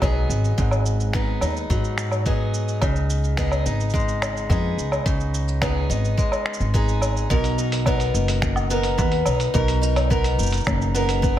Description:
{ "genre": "folktronica", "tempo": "107 BPM", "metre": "4/4", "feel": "straight", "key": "B major", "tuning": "A4 = 441 Hz", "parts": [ { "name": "picked acoustic archtop guitar", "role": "arpeggios", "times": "0.0-11.4 s", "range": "G#2 to A#4", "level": "-25 LUFS", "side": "equal", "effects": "digital delay" }, { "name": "upright bass", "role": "bass", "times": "0.0-11.4 s", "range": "F#1 to G#2", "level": "-22 LUFS", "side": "equal", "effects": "none" }, { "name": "electronic kick drum", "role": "drums", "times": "0.0-11.3 s", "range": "none", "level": "-24 LUFS", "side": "equal", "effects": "none" }, { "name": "lo-fi sampler-style drum kit", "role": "drums", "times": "0.0-11.3 s", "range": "cabasa, finger snaps, hi-hat, woodblock", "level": "-28 LUFS", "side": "right 1 dB", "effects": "none" } ], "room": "little or no reverb", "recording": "none", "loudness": "-19 LUFS", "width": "side -12 dB against mid", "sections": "0.0-7.3 A section; 7.3-11.4 B section", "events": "none", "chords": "0.0 G#m7; 2.8 C#7sus2; 7.3 Bmaj7" }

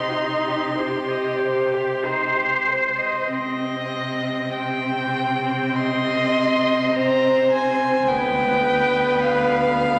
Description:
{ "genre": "classical, slow romantic movement for string quartet", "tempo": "46-53 BPM", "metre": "4/4", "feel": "rubato", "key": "C minor", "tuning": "A4 = 441 Hz", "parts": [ { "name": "warm violin", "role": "melody", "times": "0.0-10.0 s", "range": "Eb5 to C6", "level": "-27 LUFS", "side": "equal", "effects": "none" }, { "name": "dark violin", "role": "second line", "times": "0.0-10.0 s", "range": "Eb4 to Eb5", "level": "-25 LUFS", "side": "equal", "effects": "none" }, { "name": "warm viola", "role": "accompaniment", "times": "0.0-10.0 s", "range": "B3 to C5", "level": "-26 LUFS", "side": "equal", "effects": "none" }, { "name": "rich cello", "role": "bass", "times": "0.0-10.0 s", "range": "D2 to C3", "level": "-32 LUFS", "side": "equal", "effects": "none" } ], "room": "wet concert hall reverb, RT60 2.1 s", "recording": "none", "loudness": "-21 LUFS", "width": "mono", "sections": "0.0-3.3 A section; 3.3-10.0 A section", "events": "none", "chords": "0.0 Cm; 8.1 Bdim/D" }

